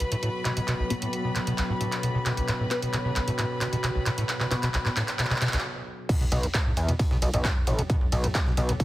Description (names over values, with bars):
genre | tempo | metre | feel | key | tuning
driving peak-time techno | 133 BPM | 4/4 | straight | unclear | A4 = 439 Hz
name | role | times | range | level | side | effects
overdriven acid bass | riff | 0.0-8.8 s | B1 to B2 | -29 LUFS | equal | distortion, lush chorus, cassette tape, sidechain pumping, tape echo
metallic inharmonic drone | drone | 0.0-8.8 s | B2 to F#3 | -35 LUFS | left 1 dB | chorus, built-in reverb, sidechain pumping
techno drum kit | drums | 0.0-8.8 s | crash cymbal, handclaps, hi-hat, ride cymbal, toms | -30 LUFS | equal | overdrive, sidechain pumping on toms, sidechain pumping on hats, sidechain pumping on cymbals
warm chamber string section | texture | 0.0-5.6 s | F#4 to B5 | -34 LUFS | left 1 dB | sidechain pumping
filtered dub chord stab | stabs | 0.9-4.6 s | B3 to B4 | -34 LUFS | left 2 dB | phaser, sidechain pumping, tape echo
breakbeat sampler-style drum kit | drums | 6.1-8.8 s | hi-hat, snare drum | -42 LUFS | equal | none
electronic kick drum | drums | 6.1-8.8 s | none | -25 LUFS | equal | distortion, overdrive
gritty driven synth bass | bass | 6.3-8.7 s | A1 to E2 | -26 LUFS | equal | sidechain pumping
room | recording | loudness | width
moderate stone room reverb, RT60 1.2 s, digital ambience | heavily compressed radio sound, multiband compression | -24 LUFS | side -16 dB against mid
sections
0.0-6.1 A section; 6.1-8.8 B section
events
build-up 0.0-6.1; drum fill 0.0-5.6; break 5.6-6.1; drop 6.1-8.8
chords
0.0 B5